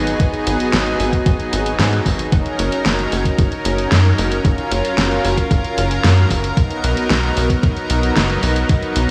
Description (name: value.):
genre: synthwave.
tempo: 113 BPM.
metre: 4/4.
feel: straight.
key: F# major.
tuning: A4 = 440 Hz.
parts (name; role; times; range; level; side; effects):
lush unison pad; sustained chords; 0.0-9.1 s; F#3 to A#4; -22 LUFS; equal; chorus, sidechain pumping.
tight sequencer bass; bass; 0.0-9.1 s; F#1 to G#2; -21 LUFS; equal; sidechain pumping.
pop drum kit; drums; 0.1-9.1 s; hi-hat, snare drum; -24 LUFS; equal; gated reverb.
electronic kick drum; drums; 0.2-8.8 s; none; -19 LUFS; equal; overdrive.
room: light reverb, digital ambience.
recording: studio ambience.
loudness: -17 LUFS.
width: mono.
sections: 0.0-9.1 A section.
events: none.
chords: 0.0 G#m7; 2.3 F#6; 6.6 Bmaj7.